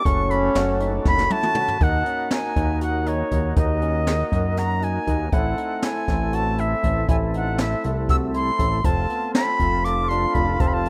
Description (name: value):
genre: progressive instrumental, band music in an uneven meter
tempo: 239 BPM (eighths)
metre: 7/8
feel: straight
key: unclear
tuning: A4 = 440 Hz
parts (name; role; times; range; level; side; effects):
- bright reedy silver concert flute; melody; 0.0-10.9 s; C#5 to E6; -27 LUFS; equal; tape echo
- tonewheel organ; accompaniment; 0.0-10.9 s; A3 to A#4; -32 LUFS; equal; chorus vibrato
- barky tine electric piano; arpeggios; 0.0-10.9 s; B3 to F#4; -34 LUFS; equal; none
- warm trombone; second line; 0.1-1.5, 8.8-10.9 s; C#4 to F4; -29 LUFS; equal; tape echo
- fat analog bass; bass; 0.1-10.9 s; F1 to F#2; -26 LUFS; equal; none
- jazz brush drum kit; drums; 0.1-10.9 s; hi-hat, kick drum, snare drum, toms; -26 LUFS; equal; none
room: small room ambience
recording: rough home demo mix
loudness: -22 LUFS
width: mono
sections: 0.0-1.8 A section; 1.8-10.9 B section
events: flute solo 0.0-1.8; drum fill 1.1-1.8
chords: 0.1 F#m; 1.8 D#m; 5.3 Am; 8.8 F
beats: | 0.06 0.31 0.56 0.81 1.06 1.31 1.56 | 1.81 2.06 2.32 2.57 2.82 3.07 3.32 | 3.57 3.82 4.08 4.33 4.58 4.83 5.08 | 5.33 5.58 5.83 6.08 6.33 6.59 6.84 | 7.09 7.34 7.59 7.84 8.09 8.35 8.60 | 8.85 9.10 9.35 9.60 9.85 10.10 10.35 | 10.61 10.86